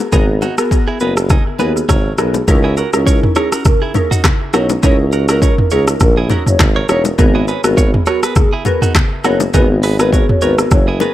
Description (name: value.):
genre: afrobeats.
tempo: 102 BPM.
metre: 4/4.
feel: swing 55% on 16ths.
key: C# dorian.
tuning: A4 = 440 Hz.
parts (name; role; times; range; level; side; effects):
glassy digital keys; accompaniment; 0.0-11.1 s; B3 to A#4; -19 LUFS; left 1 dB; chorus, analog delay.
direct-recorded clean electric guitar; riff; 0.1-11.1 s; D#4 to C#5; -23 LUFS; right 6 dB; analog delay.
warm tuba; bass; 0.1-11.1 s; E1 to D#2; -16 LUFS; equal; none.
deep house drum kit; drums; 0.1-11.1 s; handclaps, hi-hat, kick drum, rim click, shaker, toms; -14 LUFS; equal; none.
congas and bongos; percussion; 0.1-11.1 s; none; -21 LUFS; left 4 dB; none.
hollow clarinet-like synth lead; melody; 2.9-10.9 s; F#4 to C#5; -20 LUFS; equal; chorus, analog delay.
room: light reverb, digital ambience.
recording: echo-heavy mix.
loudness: -11 LUFS.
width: side -14 dB against mid.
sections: 0.0-2.5 A section; 2.5-11.1 B section.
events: none.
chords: 0.0 G#m9; 2.5 C#m69; 7.2 G#m9.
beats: | 0.13 0.71 1.30 1.89 | 2.48 3.07 3.66 4.24 | 4.83 5.42 6.01 6.60 | 7.18 7.77 8.36 8.95 | 9.54 10.13 10.71.